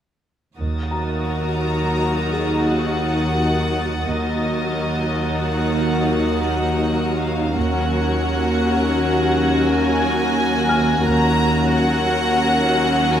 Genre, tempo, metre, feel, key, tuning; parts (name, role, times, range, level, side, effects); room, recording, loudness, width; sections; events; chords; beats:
cinematic, suspense film score; 86 BPM; 5/4; straight; Eb minor; A4 = 440 Hz
warm chamber violin section; second line; 0.6-13.2 s; Gb4 to Bb4; -25 LUFS; left 1 dB
dark symphonic viola section; accompaniment; 0.6-13.2 s; Gb3 to Eb4; -24 LUFS; equal
warm symphonic cello section; bass; 0.6-13.2 s; Eb2; -24 LUFS; right 2 dB
warm symphonic double bass section; bass; 0.6-11.7 s; Eb2; -26 LUFS; right 2 dB
bowed-like drone; drone; 1.5-13.2 s; Eb2; -24 LUFS; equal; built-in reverb
dark studio violin section; texture; 0.6-13.2 s; Eb6 to Bb6; -31 LUFS; equal
dark baby grand piano; texture; 0.9-13.2 s; Ab4 to F6; -32 LUFS; left 3 dB
warm symphonic violin section; melody; 1.3-13.2 s; Eb5 to Bb5; -24 LUFS; left 2 dB
wet scoring stage reverb, RT60 1.7 s; -17 LUFS; side -9 dB against mid
0.6-13.2 A section
0.6 Ebm; 7.6 Gb/Eb
| 0.58 1.28 1.98 2.67 3.37 | 4.07 4.77 5.46 6.16 6.86 | 7.56 8.26 8.95 9.65 10.35 | 11.05 11.74 12.44 13.14